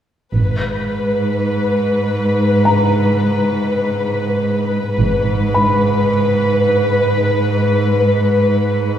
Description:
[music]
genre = cinematic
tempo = 52 BPM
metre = 4/4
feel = straight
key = G# minor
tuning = A4 = 440 Hz
[part]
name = warm studio violin section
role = melody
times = 0.4-9.0 s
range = B4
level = -18 LUFS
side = left 2 dB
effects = none
[part]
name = dark studio double bass section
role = bass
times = 0.4-6.1 s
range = G#1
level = -19 LUFS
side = right 2 dB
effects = none
[part]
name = warm studio cello section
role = bass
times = 0.4-9.0 s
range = G#2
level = -17 LUFS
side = right 2 dB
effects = none
[part]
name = felt-muted upright piano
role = texture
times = 2.7-9.0 s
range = A#5 to B5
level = -23 LUFS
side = left 1 dB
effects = none
[sound]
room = wet scoring stage reverb, RT60 1.9 s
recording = heard from further back in the room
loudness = -14 LUFS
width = side -9 dB against mid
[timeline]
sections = 0.3-9.0 A section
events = none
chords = 0.3 G#madd9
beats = | 0.35 1.50 2.65 3.81 | 4.96 6.12 7.27 8.43

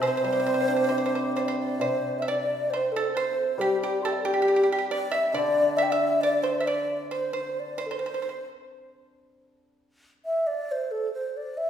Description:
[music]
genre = chinese traditional, Chinese chamber ensemble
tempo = 68 BPM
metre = 2/4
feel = rubato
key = C gong mode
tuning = A4 = 437 Hz
[part]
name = low xiao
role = melody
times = 0.0-11.7 s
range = G4 to C6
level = -26 LUFS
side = equal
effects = none
[part]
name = pipa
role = second line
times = 0.0-8.4 s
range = G4 to E5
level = -30 LUFS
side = right 3 dB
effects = none
[part]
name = hammered dulcimer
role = accompaniment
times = 0.0-8.0 s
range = C3 to G4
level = -30 LUFS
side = left 2 dB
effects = none
[part]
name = woodblock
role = percussion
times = 0.0-1.1 s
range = none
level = -39 LUFS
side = left 1 dB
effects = none
[sound]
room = wet recital hall reverb, RT60 1.7 s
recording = heard from further back in the room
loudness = -23 LUFS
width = side -9 dB against mid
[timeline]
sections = 0.0-1.8 A section; 1.8-11.7 B section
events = none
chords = none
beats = | 0.01 0.91 | 1.81 2.71 | 3.59 4.47 | 5.34 6.22 | 7.11 7.99 | 8.89 9.79 | 10.67 11.54

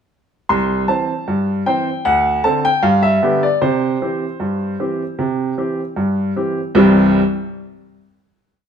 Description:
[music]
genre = ragtime piano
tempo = 77 BPM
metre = 2/4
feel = straight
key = C major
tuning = A4 = 439 Hz
[part]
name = clear upright piano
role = solo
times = 0.5-7.2 s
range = C2 to C6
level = -15 LUFS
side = equal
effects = none
[sound]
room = moderate large studio reverb, RT60 1.2 s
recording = band playing live in one room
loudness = -15 LUFS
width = side -7 dB against mid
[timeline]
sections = 0.5-6.8 A section; 6.8-8.3 final chord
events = none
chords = 0.5 C; 2.1 D7; 2.8 G; 3.6 C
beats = | 0.49 1.27 | 2.05 2.83 | 3.62 4.40 | 5.18 5.97 | 6.75

